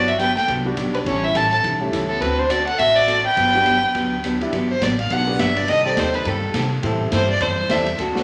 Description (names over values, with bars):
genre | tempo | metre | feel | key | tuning
country, western swing | 208 BPM | 4/4 | swing 60% on 8ths | G major | A4 = 440 Hz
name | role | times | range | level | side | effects
dark fiddle | melody | 0.0-4.2 s | A4 to A5 | -20 LUFS | equal | none
clear fiddle | second line | 0.0-8.0 s | B3 to F#5 | -26 LUFS | equal | none
archtop guitar, miked and amplified | accompaniment | 0.0-8.2 s | C3 to A4 | -27 LUFS | equal | none
upright bass | bass | 0.0-8.2 s | G1 to C3 | -30 LUFS | equal | none
swinging big-band drum kit | drums | 0.1-8.2 s | hi-hat, kick drum, ride cymbal, snare drum | -32 LUFS | equal | none
clear upright piano | accompaniment | 0.7-8.2 s | G3 to D5 | -29 LUFS | equal | none
room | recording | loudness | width
wet large studio reverb, RT60 1.1 s | none | -19 LUFS | mono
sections
0.0-4.5 A section; 4.5-8.2 B section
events
fiddle solo 4.5-8.2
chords
0.0 Gmaj7; 1.1 A7; 2.2 D7; 3.4 Gmaj7; 5.7 Cm6; 6.8 Am7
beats
0.19 0.48 0.77 | 1.06 1.35 1.64 1.93 | 2.21 2.50 2.79 3.08 | 3.37 3.66 3.95 4.24 | 4.53 4.82 5.10 5.39 | 5.68 5.97 6.25 6.54 | 6.83 7.12 7.41 7.69 | 7.98